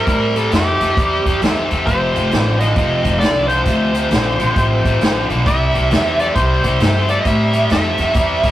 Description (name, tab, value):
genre	electric blues shuffle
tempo	134 BPM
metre	4/4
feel	swing 64% on 8ths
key	C mixolydian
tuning	A4 = 435 Hz
part	biting lead guitar	melody	0.0-8.5 s	G4 to E5	-19 LUFS	equal	overdrive, digital delay
part	overdriven electric guitar	riff	0.0-8.5 s	F2 to A3	-19 LUFS	left 1 dB	none
part	upright bass	bass	0.1-8.5 s	F1 to A2	-19 LUFS	equal	none
part	vintage drum kit	drums	0.1-8.5 s	hi-hat, kick drum, snare drum	-20 LUFS	equal	none
room	moderate stone room reverb, RT60 1.3 s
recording	rough rehearsal-room recording, warm saturation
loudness	-13 LUFS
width	side -13 dB against mid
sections	0.0-8.5 A section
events	none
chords	0.0 C7; 1.9 F; 5.5 C